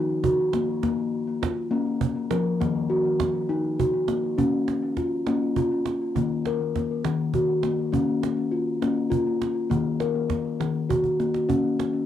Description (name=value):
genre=world meditative, meditative tuned percussion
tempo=68 BPM (dotted quarters)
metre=6/8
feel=straight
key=Bb minor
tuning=A4 = 441 Hz
part: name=steel tongue drum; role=arpeggios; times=0.0-12.1 s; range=Eb3 to Bb4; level=-23 LUFS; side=left 2 dB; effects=tape echo
part: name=cajon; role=percussion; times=0.1-12.0 s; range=none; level=-30 LUFS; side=right 7 dB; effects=none
room=wet studio reverb, RT60 0.6 s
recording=home recording on cassette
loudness=-22 LUFS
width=side -10 dB against mid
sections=0.0-4.4 A section; 4.4-12.1 B section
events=drum fill 11.0-11.5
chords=0.0 Ebm; 0.8 Bbm; 2.6 Ebm; 4.4 Bbm; 6.2 Ebm; 7.9 Bbm; 9.7 Ebm; 11.5 Bbm